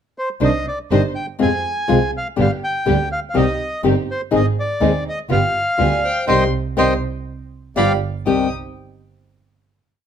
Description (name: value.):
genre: tango.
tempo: 122 BPM.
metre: 4/4.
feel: rubato.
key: C harmonic minor.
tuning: A4 = 439 Hz.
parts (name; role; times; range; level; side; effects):
bandoneon; melody; 0.2-8.5 s; C5 to Ab5; -22 LUFS; equal; plate reverb.
nylon-string guitar; accompaniment; 0.4-8.5 s; B2 to Ab4; -19 LUFS; left 6 dB; none.
dark studio string section; stabs; 0.4-8.5 s; B3 to C5; -25 LUFS; right 3 dB; none.
dark double bass; bass; 0.4-8.5 s; G1 to F2; -22 LUFS; right 4 dB; none.
vibraphone with medium mallets; second line; 5.8-8.5 s; G4 to G5; -26 LUFS; right 2 dB; none.
warm violin; second line; 5.8-8.5 s; G5 to Eb6; -27 LUFS; left 2 dB; none.
room: moderate club reverb, RT60 0.7 s.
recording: none.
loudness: -16 LUFS.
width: side -8 dB against mid.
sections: 0.0-0.4 pickup bar; 0.4-8.3 A section; 8.3-10.1 final chord.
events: band accent 6.3-8.3.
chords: 0.4 Cmadd9; 1.4 Fm; 2.4 G; 3.4 Cm; 4.3 Ab; 5.3 G7; 6.3 Cm; 7.8 G7; 8.3 Cm.